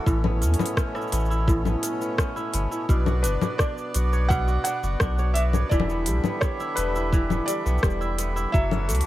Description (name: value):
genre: folktronica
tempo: 85 BPM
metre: 4/4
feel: straight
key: B minor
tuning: A4 = 442 Hz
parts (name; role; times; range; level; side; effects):
- hand-pumped harmonium; sustained chords; 0.0-9.1 s; B2 to F#4; -32 LUFS; right 1 dB; none
- kora; arpeggios; 0.0-9.1 s; A2 to C#5; -29 LUFS; equal; tape echo
- warm sub bass; bass; 0.1-9.0 s; E1 to E2; -24 LUFS; equal; none
- electronic kick drum; drums; 0.1-8.7 s; none; -23 LUFS; equal; none
- organic electronic drum kit; drums; 0.1-9.1 s; cabasa, congas, hi-hat, rim click; -28 LUFS; left 3 dB; none
- felt-muted upright piano; melody; 3.2-9.1 s; B4 to F#5; -30 LUFS; equal; tape echo
room: little or no reverb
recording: none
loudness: -21 LUFS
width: side -15 dB against mid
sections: 0.0-9.1 A section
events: none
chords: 0.1 Aadd9; 2.9 Bmadd9; 5.7 Em7; 8.5 F#m7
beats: | 0.07 0.77 1.48 2.18 | 2.89 3.60 4.30 5.01 | 5.71 6.42 7.12 7.83 | 8.54